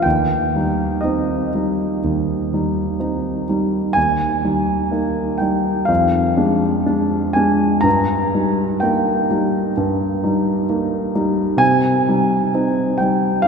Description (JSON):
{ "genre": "classical, romantic nocturne for solo piano", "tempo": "62 BPM", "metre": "4/4", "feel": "uneven beats, rubato", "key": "C minor", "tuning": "A4 = 435 Hz", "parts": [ { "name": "warm concert grand piano", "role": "solo", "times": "0.0-13.5 s", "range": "Eb2 to Bb5", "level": "-16 LUFS", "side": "equal", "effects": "none" } ], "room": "wet cathedral reverb, RT60 4.8 s", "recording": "minimal, uncompressed stereo recording", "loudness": "-16 LUFS", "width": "side -6 dB against mid", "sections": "0.0-13.5 A section", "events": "none", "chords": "0.0 Cm/Eb; 4.0 Eb; 5.9 Ddim/F; 7.9 Eb/G; 11.6 Cm", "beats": "| 0.05 1.03 2.02 2.99 | 3.97 4.93 5.89 6.87 | 7.85 8.82 9.76 10.69 | 11.61 12.54 13.46" }